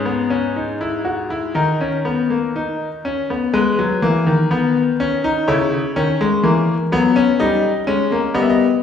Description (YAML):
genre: classical, baroque-style 3-part fugue for grand piano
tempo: 62 BPM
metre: 4/4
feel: straight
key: G# minor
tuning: A4 = 440 Hz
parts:
  - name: bright grand piano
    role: solo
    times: 0.0-8.7 s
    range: G#2 to E5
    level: -15 LUFS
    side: left 2 dB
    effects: none
room: wet recital hall reverb, RT60 1.5 s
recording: heard from further back in the room, vinyl crackle, studio reverb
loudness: -16 LUFS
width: side -8 dB against mid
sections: 0.0-3.6 A section; 3.6-8.8 B section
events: none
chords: 0.0 D#sus4/G#; 1.6 D#5; 3.6 G#m (rootless); 5.5 C#m; 7.4 D#/G